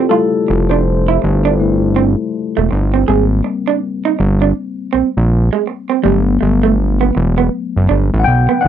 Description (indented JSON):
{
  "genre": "R&B, neo-soul",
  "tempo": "81 BPM",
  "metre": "4/4",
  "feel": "swing 62% on 16ths",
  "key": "unclear",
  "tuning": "A4 = 438 Hz",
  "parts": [
    { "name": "electric guitar through a small old amp", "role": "second line", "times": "0.0-8.7 s", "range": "G3 to Ab4", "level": "-16 LUFS", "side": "right 12 dB", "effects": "none" },
    { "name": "tine electric piano", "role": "accompaniment", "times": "0.0-8.7 s", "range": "F#3 to G5", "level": "-18 LUFS", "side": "left 6 dB", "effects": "overdrive, lush chorus" },
    { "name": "fat analog bass", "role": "bass", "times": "0.5-8.7 s", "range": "E1 to B1", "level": "-13 LUFS", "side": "right 1 dB", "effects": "none" }
  ],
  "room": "little or no reverb",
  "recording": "dry, close 1970s-style studio recording",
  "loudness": "-12 LUFS",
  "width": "side -10 dB against mid",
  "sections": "0.0-8.7 A section",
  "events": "tine electric piano solo 0.0-8.7",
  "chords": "0.0 Fmaj9; 3.1 Abmaj9; 6.0 Gmaj9",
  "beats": "| 0.10 0.85 1.59 2.33 | 3.07 3.81 4.55 5.29 | 6.03 6.77 7.51 8.25"
}